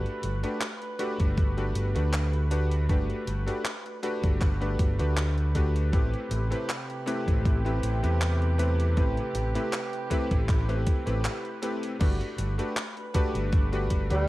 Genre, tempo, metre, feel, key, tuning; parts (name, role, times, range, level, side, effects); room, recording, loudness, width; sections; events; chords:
vaporwave; 79 BPM; 4/4; swing 54% on 16ths; G major; A4 = 440 Hz
bright electric grand piano; accompaniment; 0.0-14.3 s; A3 to B4; -32 LUFS; left 1 dB; analog chorus, tape echo
dark chamber string section; sustained chords; 0.0-14.3 s; C3 to B4; -38 LUFS; right 2 dB
overdriven fingered electric bass; bass; 0.0-14.3 s; G1 to E2; -27 LUFS; equal
gated 80s digital drum machine; drums; 0.1-14.2 s; crash cymbal, handclaps, hi-hat; -35 LUFS; equal; gated reverb, studio reverb
electronic kick drum; drums; 1.2-14.1 s; -25 LUFS; equal; studio reverb
warm tenor saxophone; melody; 14.1-14.3 s; G3; -28 LUFS; right 2 dB
digital ambience; echo-heavy mix; -25 LUFS; side -17 dB against mid
0.0-12.0 A section; 12.0-14.3 B section
break 11.3-12.0
0.0 Gmaj7; 5.9 Am9; 12.0 Gmaj7